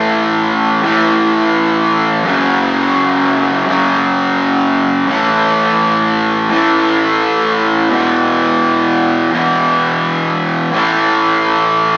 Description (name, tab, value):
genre	rock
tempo	85 BPM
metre	4/4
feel	straight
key	A major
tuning	A4 = 440 Hz
part	fuzz guitar	solo	0.0-12.0 s	E2 to A3	-10 LUFS	equal	distortion, slapback echo
room	wet scoring stage reverb, RT60 1.7 s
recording	big arena sound, small speaker sound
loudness	-10 LUFS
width	side -21 dB against mid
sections	0.0-12.0 A section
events	none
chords	0.0 A5; 2.3 F#5; 5.1 A5; 7.9 E5; 10.7 A5